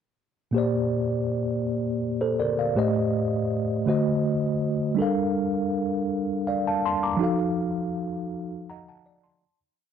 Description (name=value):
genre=R&B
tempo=54 BPM (dotted quarters)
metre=6/8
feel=straight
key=Bb major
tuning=A4 = 440 Hz
part: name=mellow tine electric piano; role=solo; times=0.5-9.6 s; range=A2 to D6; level=-23 LUFS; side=equal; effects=overdrive, medium stereo tremolo
room=digital ambience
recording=dry, close 1970s-style studio recording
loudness=-23 LUFS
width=side -8 dB against mid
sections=0.5-9.4 verse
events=fade-out 7.2-9.4; tine electric piano fill 8.3-9.4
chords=0.5 Bb6; 2.8 Am7b5; 3.9 D7b9; 5.0 Gm9; 7.2 F7b9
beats=| 0.54 1.65 | 2.76 3.87 | 4.98 6.09 | 7.20 8.32